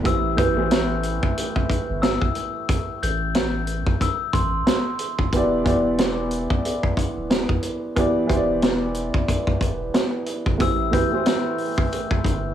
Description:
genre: hip hop, boom-bap hip-hop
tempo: 91 BPM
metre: 4/4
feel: swing 57% on 16ths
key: A minor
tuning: A4 = 438 Hz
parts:
  - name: dark upright piano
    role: accompaniment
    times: 0.0-12.5 s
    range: A2 to D5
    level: -24 LUFS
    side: right 2 dB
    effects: high-pass filter, low-pass filter, plate reverb
  - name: saturated sub bass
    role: bass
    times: 0.0-12.5 s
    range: D1 to A1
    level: -28 LUFS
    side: equal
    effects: none
  - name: glockenspiel with rubber mallets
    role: melody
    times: 0.1-4.8, 10.6-11.4 s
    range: C6 to G6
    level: -28 LUFS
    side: left 5 dB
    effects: high-pass filter, low-pass filter, plate reverb, tape echo
  - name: vintage drum kit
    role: drums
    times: 0.1-12.4 s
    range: hi-hat, kick drum, snare drum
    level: -22 LUFS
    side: equal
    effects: none
room: moderate studio reverb, RT60 0.5 s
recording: small room ambience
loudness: -20 LUFS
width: side -10 dB against mid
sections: 0.1-10.6 A section; 10.6-12.5 B section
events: none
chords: 0.1 Am7; 5.3 Em7; 10.6 Am7

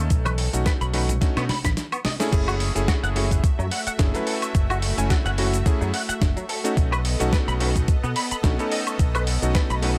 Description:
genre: nu-disco, nu disco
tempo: 108 BPM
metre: 4/4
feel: swing 55% on 16ths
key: F# dorian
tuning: A4 = 440 Hz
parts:
  - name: bright electric grand piano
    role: accompaniment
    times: 0.0-10.0 s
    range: A3 to G#5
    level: -30 LUFS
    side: equal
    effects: sidechain pumping, tape echo
  - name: fingered electric bass with an envelope filter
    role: bass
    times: 0.0-10.0 s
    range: F#1 to B2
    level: -27 LUFS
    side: equal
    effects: none
  - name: dusty soul sampler-style drum kit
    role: drums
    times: 0.1-9.9 s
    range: crash cymbal, hi-hat, shaker, snare drum, woodblock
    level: -31 LUFS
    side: equal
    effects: none
  - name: electronic kick drum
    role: drums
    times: 0.1-9.7 s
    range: none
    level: -23 LUFS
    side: equal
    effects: none
  - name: direct-recorded clean electric guitar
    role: riff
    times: 0.3-9.9 s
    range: F#3 to B5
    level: -33 LUFS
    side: equal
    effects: ensemble chorus, tape echo
  - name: congas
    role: percussion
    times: 0.3-2.2 s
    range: none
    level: -35 LUFS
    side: equal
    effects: none
  - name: lush unison pad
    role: sustained chords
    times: 2.3-10.0 s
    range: A3 to E5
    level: -35 LUFS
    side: equal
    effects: chorus, sidechain pumping
room: little or no reverb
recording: none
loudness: -23 LUFS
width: mono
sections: 0.0-2.3 A section; 2.3-10.0 B section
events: drum fill 1.2-2.3; break 1.8-2.3; drop 2.3-10.0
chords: 0.0 B7; 2.3 F#m7; 6.8 B7

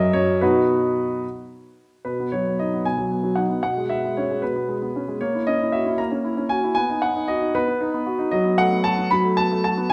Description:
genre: classical-period piano sonatina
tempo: 76 BPM (dotted quarters)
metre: 6/8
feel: straight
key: B major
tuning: A4 = 440 Hz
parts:
  - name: warm concert grand piano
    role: solo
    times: 0.0-9.9 s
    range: F#2 to B5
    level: -22 LUFS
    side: equal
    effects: none
room: wet recital hall reverb, RT60 1.7 s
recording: none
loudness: -22 LUFS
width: mono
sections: 0.0-2.1 A section; 2.1-9.9 B section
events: none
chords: 0.4 B; 3.6 C#5/B; 5.2 F#7/A#; 6.8 B; 8.3 B5/F#

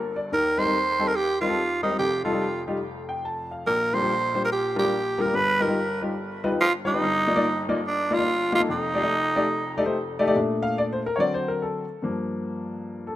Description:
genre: gospel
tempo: 143 BPM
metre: 4/4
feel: swing 62% on 8ths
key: Bb major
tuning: A4 = 440 Hz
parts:
  - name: clear baby grand piano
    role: accompaniment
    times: 0.0-13.2 s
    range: F1 to A5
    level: -25 LUFS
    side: left 2 dB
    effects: none
  - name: growling tenor saxophone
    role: melody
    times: 0.3-9.9 s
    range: D4 to C5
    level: -23 LUFS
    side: right 2 dB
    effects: tape echo
room: small room ambience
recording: rough home demo mix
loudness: -22 LUFS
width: side -14 dB against mid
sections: 0.0-10.4 A section; 10.4-13.2 B section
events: grand piano solo 10.4-13.2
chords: 0.3 Eb6; 2.0 F9; 3.7 Bb6; 5.3 G7alt; 7.0 Ebmaj9/G; 8.7 F13; 10.4 Bbmaj7; 11.2 D7; 12.0 Gm7

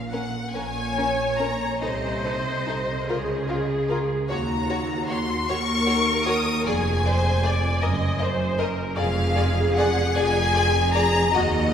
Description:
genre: classical, slow romantic movement for string orchestra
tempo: 47-53 BPM (dotted quarters)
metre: 6/8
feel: rubato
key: unclear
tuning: A4 = 440 Hz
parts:
  - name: rich studio violin section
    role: melody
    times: 0.0-11.7 s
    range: Eb5 to Eb6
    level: -26 LUFS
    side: left 4 dB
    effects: none
  - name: rich studio cello section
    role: bass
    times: 0.0-11.7 s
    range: Eb2 to Db3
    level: -28 LUFS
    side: right 1 dB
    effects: none
  - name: rich studio double bass section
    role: bass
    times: 0.0-11.7 s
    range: F1 to Eb2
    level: -28 LUFS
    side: right 2 dB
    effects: none
  - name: rich studio violin section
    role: second line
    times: 0.1-11.4 s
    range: Db4 to Eb5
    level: -30 LUFS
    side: left 2 dB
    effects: none
  - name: clear studio viola section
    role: accompaniment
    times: 0.5-11.7 s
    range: Gb4 to Eb5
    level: -27 LUFS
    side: equal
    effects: none
room: wet church reverb, RT60 3.4 s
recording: recorded in a church or concert hall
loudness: -21 LUFS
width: side -8 dB against mid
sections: 0.0-11.7 A section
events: none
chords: 0.0 Bbm; 1.8 Adim/C (rootless); 3.1 N.C.; 4.3 Ebm7; 6.7 Ddim/F; 7.8 Ebm/Gb; 9.0 Fm

